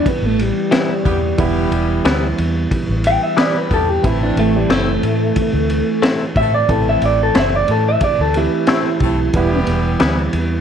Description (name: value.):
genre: straight-eighth soul blues.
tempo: 90 BPM.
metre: 4/4.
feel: straight.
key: E minor.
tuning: A4 = 440 Hz.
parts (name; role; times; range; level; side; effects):
electric guitar through a small old amp; melody; 0.0-9.7 s; G3 to G5; -17 LUFS; right 1 dB; none.
barky tine electric piano; accompaniment; 0.0-10.6 s; E3 to G4; -22 LUFS; right 5 dB; none.
crunchy breakbeat drum kit; drums; 0.1-10.5 s; kick drum, ride cymbal, snare drum; -21 LUFS; equal; none.
vintage muted fingered electric bass; bass; 0.2-10.6 s; E1 to A2; -19 LUFS; equal; none.
direct-recorded clean electric guitar; stabs; 0.7-10.2 s; A2 to E4; -21 LUFS; left 5 dB; phaser.
clear horn section; sustained chords; 1.0-10.0 s; G3 to A4; -28 LUFS; left 2 dB; none.
room: light reverb, small room ambience.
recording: none.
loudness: -14 LUFS.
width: side -8 dB against mid.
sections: 0.0-10.6 A section.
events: clean electric guitar solo 0.0-10.6.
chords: 0.0 Em; 4.0 Am; 9.3 Em.